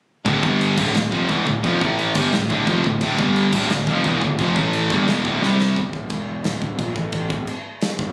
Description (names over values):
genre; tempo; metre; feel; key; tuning
heavy metal; 174 BPM; 4/4; straight; D minor; A4 = 440 Hz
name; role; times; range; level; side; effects
sludgy distorted guitar; riff; 0.3-5.8 s; D2 to C4; -23 LUFS; equal; overdrive
tight distorted guitar; riff; 0.3-5.8 s; D2 to C4; -26 LUFS; equal; distortion
fuzz picked electric bass; bass; 0.3-8.1 s; D1 to C2; -27 LUFS; equal; overdrive
modern studio drum kit; drums; 0.3-8.1 s; china cymbal, crash cymbal, kick drum, snare drum; -28 LUFS; equal; none
room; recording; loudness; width
light reverb; recorded on a phone in the room, studio ambience; -20 LUFS; mono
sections
0.3-5.8 A section; 5.8-8.1 B section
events
drum fill 5.4-5.8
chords
0.3 D5; 0.4 G5; 0.8 Dm; 1.8 A5; 2.2 Dm; 3.2 G5; 3.5 Dm; 4.6 A5; 4.9 D5; 5.4 C5; 5.8 N.C.; 6.5 Bb/D; 7.0 N.C.; 7.3 Dm